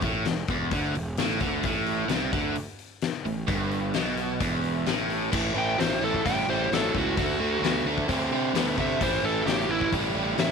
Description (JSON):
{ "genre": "blues rock power trio and southern rock", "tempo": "130 BPM", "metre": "4/4", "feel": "straight", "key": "unclear", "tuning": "A4 = 440 Hz", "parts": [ { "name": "biting overdriven guitar", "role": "riff", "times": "0.0-10.5 s", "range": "E2 to C4", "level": "-27 LUFS", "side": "right 1 dB", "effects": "none" }, { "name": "fuzz fingered electric bass", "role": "bass", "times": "0.0-10.5 s", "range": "E1 to C3", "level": "-32 LUFS", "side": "right 2 dB", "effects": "overdrive" }, { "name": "huge arena drum kit", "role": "drums", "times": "0.0-10.5 s", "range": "crash cymbal, hi-hat, kick drum, snare drum", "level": "-30 LUFS", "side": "left 5 dB", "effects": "none" }, { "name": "smooth overdriven lead guitar", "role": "melody", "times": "5.6-10.5 s", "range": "E4 to G5", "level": "-29 LUFS", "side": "right 1 dB", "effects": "slapback echo" } ], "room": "light reverb", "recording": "1960s-style stereo", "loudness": "-24 LUFS", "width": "side -6 dB against mid", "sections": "0.0-5.3 A section; 5.3-10.5 B section", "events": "lead electric guitar solo 5.3-10.5", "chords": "0.0 Esus4; 1.6 Amadd11; 3.5 E5; 5.3 A7(no3); 7.2 D7; 9.0 A7(no3)", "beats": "0.27 0.73 1.19 | 1.65 2.11 2.57 3.03 | 3.49 3.95 4.41 4.87 | 5.33 5.79 6.25 6.71 | 7.17 7.63 8.09 8.55 | 9.01 9.47 9.93 10.39" }